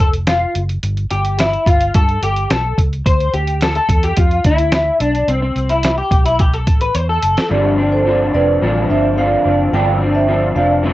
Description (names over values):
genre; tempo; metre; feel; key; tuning
indie pop, bedroom pop; 108 BPM; 4/4; straight; unclear; A4 = 440 Hz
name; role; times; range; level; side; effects
electric guitar through a small old amp; accompaniment; 0.0-10.9 s; G2 to C5; -16 LUFS; left 2 dB; ensemble chorus, warbly pitch drift
vintage muted fingered electric bass; bass; 0.0-10.9 s; F1 to G2; -19 LUFS; equal; none
lo-fi sampler-style drum kit; drums; 0.0-7.5 s; hi-hat, kick drum, snare drum; -16 LUFS; equal; cassette tape
vibraphone with soft mallets; second line; 7.5-10.7 s; G4 to G5; -17 LUFS; right 4 dB; wide subtle chorus, tape echo
room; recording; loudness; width
light reverb; home recording on cassette, nothing above 8.0 kHz; -13 LUFS; side -16 dB against mid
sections
0.0-7.5 A section; 7.5-10.9 B section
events
clean electric guitar solo 0.0-7.5; drum fill 7.0-7.5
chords
0.0 N.C.; 3.1 Dm; 5.3 Cmaj7; 7.5 G7sus4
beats
0.27 | 0.83 1.39 1.94 2.50 | 3.06 3.61 4.17 4.73 | 5.28 5.84 6.39 6.95 | 7.51 8.06 8.62 9.17 | 9.73 10.28 10.84